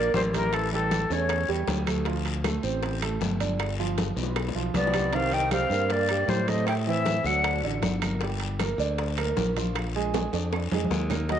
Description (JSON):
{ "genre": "Afro-Cuban jazz", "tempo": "156 BPM", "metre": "4/4", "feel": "straight", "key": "G minor", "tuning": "A4 = 439 Hz", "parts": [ { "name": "breathy bright concert flute", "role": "melody", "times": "0.0-1.5, 4.8-7.6, 11.3-11.4 s", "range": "A4 to G5", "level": "-27 LUFS", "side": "left 4 dB", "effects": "none" }, { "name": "breathy tenor saxophone", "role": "second line", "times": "0.0-1.5, 4.8-7.6 s", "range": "E3 to E4", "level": "-32 LUFS", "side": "right 6 dB", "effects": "none" }, { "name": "warm grand piano", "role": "accompaniment", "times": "0.0-11.4 s", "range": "D3 to Gb5", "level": "-31 LUFS", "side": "right 7 dB", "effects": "none" }, { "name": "modern bright fingered electric bass", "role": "bass", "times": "0.0-11.4 s", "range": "G1 to A2", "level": "-29 LUFS", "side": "left 1 dB", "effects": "none" }, { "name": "bongos", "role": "percussion", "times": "0.1-11.4 s", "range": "none", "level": "-37 LUFS", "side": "left 10 dB", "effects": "none" }, { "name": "congas", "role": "percussion", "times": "0.1-11.4 s", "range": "none", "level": "-32 LUFS", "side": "left 1 dB", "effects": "none" }, { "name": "guiro", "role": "percussion", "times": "0.2-11.4 s", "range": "none", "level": "-40 LUFS", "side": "left 12 dB", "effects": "none" }, { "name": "timbales", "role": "percussion", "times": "0.3-11.4 s", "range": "none", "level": "-37 LUFS", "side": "right 10 dB", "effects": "none" }, { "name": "claves", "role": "percussion", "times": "0.5-11.3 s", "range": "none", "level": "-43 LUFS", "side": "right 8 dB", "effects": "none" } ], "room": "wet spring reverb, RT60 1.9 s, studio ambience", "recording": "1960s-style stereo with parts hard left and right, nothing above 10.5 kHz", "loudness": "-24 LUFS", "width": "side -9 dB against mid", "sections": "0.0-11.3 A section", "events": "drum fill 4.0-5.1, 10.1-11.3", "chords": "0.0 Gm; 0.5 A7; 2.1 Dm7; 3.6 G7; 5.1 Cm7; 6.7 Am; 7.4 D; 8.2 Gm7; 9.7 Bb7" }